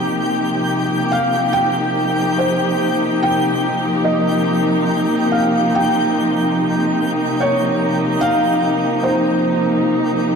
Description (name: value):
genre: ambient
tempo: 71 BPM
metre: 4/4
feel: straight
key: unclear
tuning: A4 = 440 Hz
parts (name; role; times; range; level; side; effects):
- felt-muted upright piano; melody; 0.0-10.3 s; C5 to G5; -21 LUFS; right 1 dB; ping-pong delay
- muted chamber string section; sustained chords; 0.0-10.4 s; C3 to G4; -17 LUFS; equal; none
- twinkling granular texture; texture; 0.0-10.4 s; G5 to G6; -26 LUFS; left 2 dB; built-in reverb
room: wet lush hall reverb, RT60 2.6 s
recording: dark, warm production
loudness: -15 LUFS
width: side -6 dB against mid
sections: 0.0-10.4 A section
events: none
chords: 0.0 Eb69/C